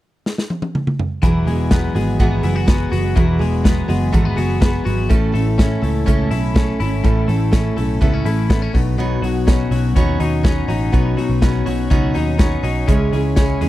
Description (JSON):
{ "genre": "jangly indie pop", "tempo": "124 BPM", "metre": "4/4", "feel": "straight", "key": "unclear", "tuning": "A4 = 440 Hz", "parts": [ { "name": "modern studio drum kit", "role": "drums", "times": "0.3-13.7 s", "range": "hi-hat, kick drum, snare drum, toms", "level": "-17 LUFS", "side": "equal", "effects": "none" }, { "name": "picked steel-string acoustic guitar", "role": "accompaniment", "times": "1.2-13.7 s", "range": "E2 to C#5", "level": "-22 LUFS", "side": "right 4 dB", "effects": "none" }, { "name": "twelve-string electric guitar", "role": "arpeggios", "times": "1.2-13.7 s", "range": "A2 to F#4", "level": "-21 LUFS", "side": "left 5 dB", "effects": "tape echo" }, { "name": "vintage muted picked electric bass", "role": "bass", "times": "1.2-13.7 s", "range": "E1 to E2", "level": "-20 LUFS", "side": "equal", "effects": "none" } ], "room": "small room ambience", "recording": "dry, close 1970s-style studio recording", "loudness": "-15 LUFS", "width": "side -15 dB against mid", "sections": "0.0-1.2 A section; 1.2-13.7 B section", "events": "drum fill 0.3-1.2", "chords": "0.0 N.C.; 1.2 Eadd9; 5.1 A; 8.7 Badd9; 12.9 C#m" }